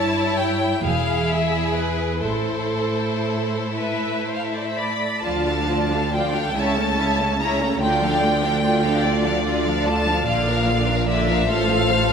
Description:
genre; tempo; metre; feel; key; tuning
classical, slow romantic movement for string orchestra; 39-52 BPM (dotted quarters); 6/8; rubato; A minor, D minor from 5.2 s; A4 = 440 Hz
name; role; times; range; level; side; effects
clear studio violin section; melody; 0.0-12.1 s; B4 to B5; -24 LUFS; left 1 dB; none
clear studio violin section; second line; 0.0-12.1 s; E4 to F5; -26 LUFS; left 3 dB; none
clear symphonic viola section; accompaniment; 0.0-12.1 s; D3 to D5; -26 LUFS; right 1 dB; none
rich symphonic cello section; bass; 0.0-12.1 s; E2 to D3; -27 LUFS; right 3 dB; none
rich symphonic double bass section; bass; 0.0-12.1 s; E1 to D2; -25 LUFS; right 2 dB; none
room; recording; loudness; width
moderate scoring stage reverb, RT60 1.9 s; none; -19 LUFS; side -6 dB against mid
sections
0.0-5.2 A section; 5.2-12.1 B section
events
none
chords
0.0 A7/G; 0.8 E; 2.2 Am; 5.2 Dm; 6.5 A/C#; 7.8 Dm; 10.3 Bb; 11.5 F/A

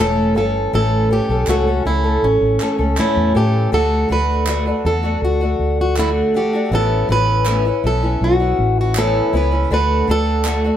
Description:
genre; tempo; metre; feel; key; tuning
acoustic pop; 80 BPM; 4/4; straight; D major; A4 = 439 Hz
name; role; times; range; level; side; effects
fingerpicked plugged-in steel-string acoustic guitar; melody; 0.0-10.8 s; C#4 to B4; -20 LUFS; equal; none
fingerpicked twelve-string acoustic guitar; accompaniment; 0.0-10.8 s; A2 to A4; -18 LUFS; equal; none
vintage muted fingered electric bass; bass; 0.0-10.7 s; E1 to A2; -19 LUFS; equal; none
group handclap; percussion; 1.5-10.6 s; none; -28 LUFS; right 2 dB; none
room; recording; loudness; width
moderate small room reverb, RT60 0.5 s; band playing live in one room; -14 LUFS; side -10 dB against mid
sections
0.0-3.7 A section; 3.7-10.8 B section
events
none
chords
0.0 A; 3.7 D; 6.7 Aadd9; 9.7 D

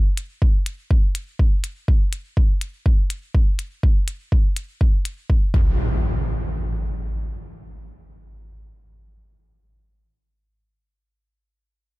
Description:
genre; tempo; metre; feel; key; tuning
minimal techno; 123 BPM; 4/4; swing 59% on 16ths; none; none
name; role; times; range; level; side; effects
electronic hi-hat; drums; 0.2-5.2 s; none; -30 LUFS; left 2 dB; none
electronic kick drum; drums; 0.4-5.7 s; none; -17 LUFS; equal; none
impact; sound effects; 5.5-9.6 s; none; -25 LUFS; equal; none
room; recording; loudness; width
little or no reverb; none; -19 LUFS; side -21 dB against mid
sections
0.0-5.8 A section; 5.8-9.7 B section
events
none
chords
none

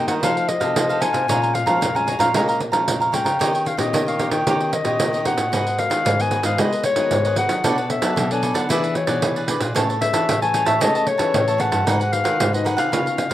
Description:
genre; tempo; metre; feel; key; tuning
samba and choro; 113 BPM; 4/4; straight; unclear; A4 = 440 Hz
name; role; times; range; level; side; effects
mellow clarinet; melody; 0.0-13.3 s; C#5 to G#5; -22 LUFS; left 3 dB; none
cavaquinho; accompaniment; 0.0-13.3 s; D4 to A#5; -24 LUFS; right 3 dB; none
nylon-string guitar; accompaniment; 0.0-13.3 s; E#2 to C#5; -27 LUFS; left 4 dB; none
nylon-string guitar; bass; 0.0-13.3 s; G2 to A#3; -26 LUFS; equal; none
pandeiro; percussion; 0.1-13.3 s; none; -23 LUFS; right 4 dB; none
room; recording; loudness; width
light reverb, small room ambience; rough home demo mix; -17 LUFS; side -13 dB against mid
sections
0.0-13.3 A section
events
none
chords
0.2 F7b9; 1.3 A#m7; 3.4 D#7b13; 5.5 G#m9; 7.6 Bm9; 8.7 E7; 9.8 Amaj9; 11.9 G#m7

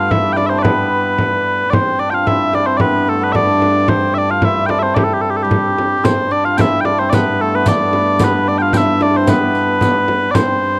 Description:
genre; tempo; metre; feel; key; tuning
medieval dance; 111 BPM; 2/4; straight; G mixolydian; A4 = 441 Hz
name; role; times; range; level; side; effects
mellow small bagpipes; melody; 0.0-10.8 s; G4 to G5; -18 LUFS; equal; tape echo
hammered dulcimer; second line; 0.0-10.8 s; G3 to F4; -22 LUFS; equal; none
rich viola da gamba; drone; 0.0-10.8 s; G2; -24 LUFS; equal; none
frame drum; percussion; 0.1-10.6 s; none; -21 LUFS; equal; none
riq; percussion; 6.0-10.6 s; none; -26 LUFS; equal; none
room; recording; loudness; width
light reverb; dry, close 1970s-style studio recording; -15 LUFS; mono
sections
0.0-6.0 A section; 6.0-10.8 A section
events
none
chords
none

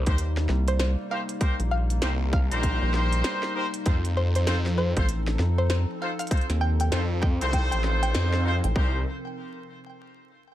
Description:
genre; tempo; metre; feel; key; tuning
glitch hop; 98 BPM; 4/4; swing 62% on 16ths; C dorian; A4 = 440 Hz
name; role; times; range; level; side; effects
woody wave-folded pluck; melody; 0.0-8.4 s; C5 to G5; -33 LUFS; equal; chorus, digital delay
warbly tape-like pad; sustained chords; 0.0-9.0 s; C3 to Bb4; -35 LUFS; left 2 dB; chorus, built-in reverb, vintage 12-bit sampler grit, sidechain pumping
phased detuned saw bass; bass; 0.0-9.0 s; A1 to F2; -25 LUFS; equal; phaser
warm horn section; stabs; 0.1-9.0 s; Eb4 to C5; -31 LUFS; left 1 dB; sidechain pumping, digital delay
rubbery square bass; bass; 0.1-8.7 s; A1 to F2; -23 LUFS; equal; none
electronic kick drum; drums; 0.1-8.9 s; none; -24 LUFS; equal; overdrive
glitchy drum kit; drums; 0.1-8.7 s; hi-hat, snare drum; -33 LUFS; equal; none
room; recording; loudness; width
little or no reverb; vinyl crackle; -22 LUFS; side -13 dB against mid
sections
0.0-8.8 A section; 8.8-10.5 B section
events
drop 0.0-8.8; band accent 8.1-8.5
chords
0.0 Cm7; 3.9 F7; 8.8 Cm7

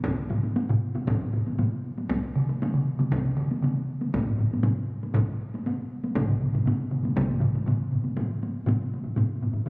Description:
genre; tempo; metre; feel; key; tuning
japanese traditional, taiko drum ensemble; 118 BPM; 4/4; straight; none; none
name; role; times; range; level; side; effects
taiko ensemble; percussion; 0.0-7.3 s; none; -32 LUFS; equal; none
taiko ensemble; percussion; 0.1-9.6 s; none; -30 LUFS; equal; none
taiko ensemble; percussion; 0.3-9.7 s; none; -27 LUFS; equal; none
solo taiko drums; percussion; 2.4-8.0 s; none; -27 LUFS; equal; none
room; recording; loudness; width
wet concert hall reverb, RT60 2.3 s; recorded on a phone in the room, club reverb; -24 LUFS; side -28 dB against mid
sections
0.0-8.2 A section; 8.2-9.7 B section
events
speeding up 0.0-9.7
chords
none

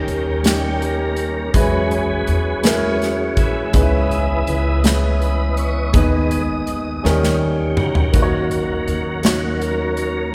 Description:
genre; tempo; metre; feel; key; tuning
slow gospel; 54 BPM (dotted quarters); 6/8; straight; unclear; A4 = 441 Hz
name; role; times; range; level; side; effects
warm upright piano; accompaniment; 0.0-10.3 s; C#3 to C#5; -24 LUFS; equal; none
tonewheel organ; sustained chords; 0.0-10.3 s; E3 to D#5; -25 LUFS; equal; fast rotary speaker, chorus vibrato
upright bass; bass; 0.0-10.3 s; C#2 to E2; -24 LUFS; equal; none
modern studio drum kit; drums; 0.1-10.1 s; hi-hat, kick drum, snare drum, toms; -22 LUFS; equal; none
room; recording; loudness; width
wet church reverb, RT60 3.0 s; recorded in a church or concert hall; -18 LUFS; mono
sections
0.0-10.3 A section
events
tonewheel organ solo 0.0-10.3; drum fill 7.0-8.1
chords
0.0 D#7; 1.5 E6; 3.7 C#m7; 5.9 G#m/D#; 7.0 D#7; 8.1 D#m7

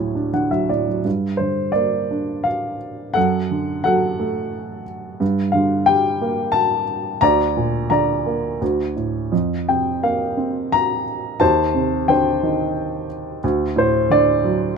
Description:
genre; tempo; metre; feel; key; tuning
classical, lyrical solo piano; 87 BPM; 3/4; uneven beats, rubato; G minor; A4 = 442 Hz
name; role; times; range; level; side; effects
dark baby grand piano; solo; 0.0-14.8 s; D2 to Bb5; -17 LUFS; equal; none
room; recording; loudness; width
light reverb; close, detailed microphones; -17 LUFS; side -5 dB against mid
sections
0.0-1.1 A section; 1.1-14.8 B section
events
grand piano fill 0.0-1.1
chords
0.0 D; 1.1 Gm; 3.2 D/F#; 5.2 Gm; 7.2 Bb/D; 8.6 D5; 9.3 Fsus4; 11.4 Cmadd9/Eb; 13.4 D

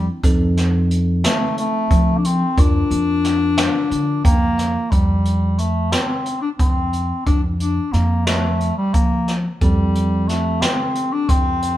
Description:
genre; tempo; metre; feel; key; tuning
progressive instrumental, band music in an uneven meter; 179 BPM (eighths); 7/8; straight; F major; A4 = 438 Hz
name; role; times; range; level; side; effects
clear bass clarinet; melody; 0.0-11.8 s; G3 to D4; -20 LUFS; left 2 dB; none
bell-like tine electric piano; accompaniment; 0.0-4.9, 9.6-11.8 s; E3 to G5; -28 LUFS; right 3 dB; none
upright bass; bass; 0.0-11.8 s; F2 to F3; -20 LUFS; equal; none
jazz brush drum kit; drums; 0.2-11.8 s; hi-hat, kick drum, snare drum; -19 LUFS; equal; none
room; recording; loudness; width
light reverb; band playing live in one room; -16 LUFS; side -13 dB against mid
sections
0.0-4.9 A section; 4.9-11.8 B section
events
tine electric piano fill 3.9-4.9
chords
0.2 F7; 2.6 Bb/F; 4.9 F5; 9.6 Fadd9

